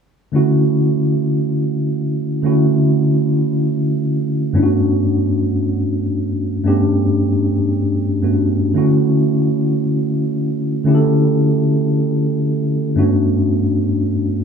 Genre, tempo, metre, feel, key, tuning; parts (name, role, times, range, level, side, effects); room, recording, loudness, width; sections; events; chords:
amapiano; free time; D major; A4 = 441 Hz
mellow tine electric piano; accompaniment; 0.3-14.4 s; G2 to A4; -14 LUFS; equal; medium stereo tremolo
wet booth ambience, RT60 0.2 s; worn, warbling old tape, cassette tape, warbly pitch drift; -14 LUFS; side -6 dB against mid
0.3-14.4 A section
0.3 Dmaj7; 4.5 Gmaj9#11; 8.8 Dmaj7; 13.0 Gmaj9#11